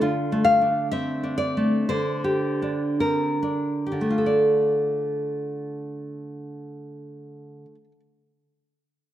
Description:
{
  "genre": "romantic piece for solo classical guitar",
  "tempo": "44-71 BPM",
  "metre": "2/4",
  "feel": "rubato",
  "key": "D minor",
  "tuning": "A4 = 435 Hz",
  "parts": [
    { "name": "nylon-string guitar", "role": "solo", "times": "0.0-8.0 s", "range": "D3 to F5", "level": "-22 LUFS", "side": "equal", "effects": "none" }
  ],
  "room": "light reverb",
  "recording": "dark, warm production",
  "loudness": "-21 LUFS",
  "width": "side -12 dB against mid",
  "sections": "0.0-4.3 A section; 4.3-9.1 B section",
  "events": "slowing down 0.0-4.3",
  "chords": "0.0 D5; 1.9 Gm/D; 4.3 Dm",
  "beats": "| 0.01 0.90 | 1.88 2.99 | 4.27 5.53 | 6.77"
}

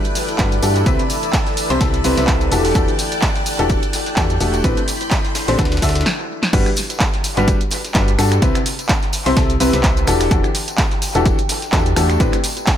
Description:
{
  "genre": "piano house",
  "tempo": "127 BPM",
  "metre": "4/4",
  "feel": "swing 56% on 16ths",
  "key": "G major",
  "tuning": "A4 = 440 Hz",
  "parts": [
    { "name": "string machine, violins", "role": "sustained chords", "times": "0.0-6.1 s", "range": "B4 to G6", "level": "-28 LUFS", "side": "equal", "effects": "ensemble chorus, sidechain pumping" },
    { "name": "punchy analog drum machine", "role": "drums", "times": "0.0-12.8 s", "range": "crash cymbal, finger snaps, handclaps, hi-hat, shaker, snare drum", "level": "-22 LUFS", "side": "right 1 dB", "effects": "dub echo" },
    { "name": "deep dark ambient pad", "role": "texture", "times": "0.0-12.8 s", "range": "E4 to G5", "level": "-27 LUFS", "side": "equal", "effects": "chorus, built-in reverb, sidechain pumping" },
    { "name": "breakbeat sampler-style drum kit", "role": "drums", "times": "0.1-12.8 s", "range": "hi-hat, snare drum, tambourine", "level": "-30 LUFS", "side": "equal", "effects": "none" },
    { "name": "tambourine", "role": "percussion", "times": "0.2-12.8 s", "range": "none", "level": "-34 LUFS", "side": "left 2 dB", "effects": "none" },
    { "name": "bright upright piano", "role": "riff", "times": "0.4-12.3 s", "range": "A2 to E5", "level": "-20 LUFS", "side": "left 2 dB", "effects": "sidechain pumping, dub echo" },
    { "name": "solid FM bass", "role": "bass", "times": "0.4-12.3 s", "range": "E1 to G2", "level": "-20 LUFS", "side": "equal", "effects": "tube saturation, sidechain pumping" },
    { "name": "electronic kick drum", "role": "drums", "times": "0.4-12.8 s", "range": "none", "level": "-18 LUFS", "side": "equal", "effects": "overdrive" }
  ],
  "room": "digital ambience",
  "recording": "echo-heavy mix",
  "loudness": "-14 LUFS",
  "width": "side -10 dB against mid",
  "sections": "0.0-6.5 A section; 6.5-12.8 B section",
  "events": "drum fill 6.1-6.5; stop 6.1-6.5; drop 6.5-12.8",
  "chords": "0.0 Gmaj7; 0.9 Cmaj7; 2.5 Em11; 4.6 Am11; 5.6 D7; 6.5 Gmaj7; 8.4 Cmaj7; 10.1 Em11; 12.2 Am11",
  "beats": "0.39 | 0.86 1.33 1.81 2.28 | 2.75 3.23 3.70 4.17 | 4.64 5.11 5.59 6.06 | 6.53 7.00 7.48 7.95 | 8.42 8.89 9.37 9.84 | 10.31 10.78 11.26 11.73 | 12.20 12.67"
}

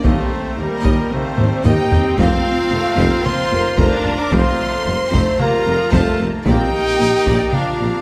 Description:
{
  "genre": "cinematic, epic orchestral film score",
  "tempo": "112 BPM",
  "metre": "4/4",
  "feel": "straight",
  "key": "unclear",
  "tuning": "A4 = 440 Hz",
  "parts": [
    { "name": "rich symphonic violin section", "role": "melody", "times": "0.0-8.0 s", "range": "Bb4 to D6", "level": "-30 LUFS", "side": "equal", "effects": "none" },
    { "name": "bright large flute ensemble", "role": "second line", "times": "0.0-8.0 s", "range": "Bb4 to D6", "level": "-30 LUFS", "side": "equal", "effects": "none" },
    { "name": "clear symphonic violin section", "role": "second line", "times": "0.0-8.0 s", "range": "Bb4 to Bb5", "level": "-33 LUFS", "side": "equal", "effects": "none" },
    { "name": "rich symphonic viola section", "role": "accompaniment", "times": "0.0-8.0 s", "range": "F3 to D4", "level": "-28 LUFS", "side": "equal", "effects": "none" },
    { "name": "mellow French horn section", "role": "sustained chords", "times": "0.0-8.0 s", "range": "Bb3 to D5", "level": "-23 LUFS", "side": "equal", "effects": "none" },
    { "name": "warm trumpet", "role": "stabs", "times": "0.0-8.0 s", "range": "G3 to Bb4", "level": "-27 LUFS", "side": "equal", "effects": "none" },
    { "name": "rich symphonic cello section", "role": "bass", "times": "0.0-7.9 s", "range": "Eb2 to Bb2", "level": "-26 LUFS", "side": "equal", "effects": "none" },
    { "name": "rich symphonic double bass section", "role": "bass", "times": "0.0-7.9 s", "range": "F1 to Eb2", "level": "-26 LUFS", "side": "equal", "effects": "none" },
    { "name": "warm tuba", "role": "bass", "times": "0.0-7.9 s", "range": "F1 to Eb2", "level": "-27 LUFS", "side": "equal", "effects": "none" },
    { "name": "taiko ensemble", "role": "drums", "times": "0.0-7.8 s", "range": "none", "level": "-23 LUFS", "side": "equal", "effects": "none" },
    { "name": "warm trombone section", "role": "sustained chords", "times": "0.1-7.7 s", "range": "Eb3 to Bb3", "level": "-32 LUFS", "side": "equal", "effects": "none" }
  ],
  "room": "moderate concert hall reverb, RT60 2.2 s",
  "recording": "none",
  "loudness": "-17 LUFS",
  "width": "mono",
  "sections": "0.0-8.0 A section",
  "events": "drum fill 1.4-2.2",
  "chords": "0.0 Eb; 2.2 Fsus4; 6.5 Bb",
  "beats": "| 0.05 0.59 1.12 1.66 | 2.19 2.72 3.26 3.79 | 4.33 4.87 5.41 5.94 | 6.47 7.01 7.55"
}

